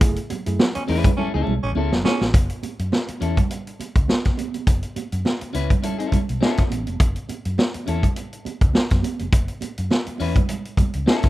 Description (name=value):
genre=funk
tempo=103 BPM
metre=4/4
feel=swing 56% on 16ths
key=F# minor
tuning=A4 = 441 Hz
part: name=tine electric piano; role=stabs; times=0.0-2.2 s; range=F#3 to G#4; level=-30 LUFS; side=right 4 dB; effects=slapback echo
part: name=hollow-body short-scale fingered electric bass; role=bass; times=0.0-11.1 s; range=E#1 to F#2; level=-25 LUFS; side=equal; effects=none
part: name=vintage drum kit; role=drums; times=0.0-11.3 s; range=hi-hat, kick drum, snare drum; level=-20 LUFS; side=equal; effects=none
part: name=congas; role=percussion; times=0.3-11.2 s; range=none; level=-30 LUFS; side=right 7 dB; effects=none
part: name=raspy baritone saxophone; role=second line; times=0.8-2.2 s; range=C#4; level=-29 LUFS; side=right 2 dB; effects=none
part: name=clean electric guitar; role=accompaniment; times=0.9-11.3 s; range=C#4 to B4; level=-27 LUFS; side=left 6 dB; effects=harmonic tremolo
room=little or no reverb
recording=rough home demo mix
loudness=-19 LUFS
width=side -16 dB against mid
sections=0.0-2.3 A section; 2.3-11.3 B section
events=band accent 0.0-2.3; drum fill 1.2-2.3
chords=0.0 F#m7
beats=| 0.01 0.59 1.18 1.76 | 2.34 2.92 3.50 4.09 | 4.67 5.25 5.83 6.42 | 7.00 7.58 8.16 8.74 | 9.33 9.91 10.49 11.07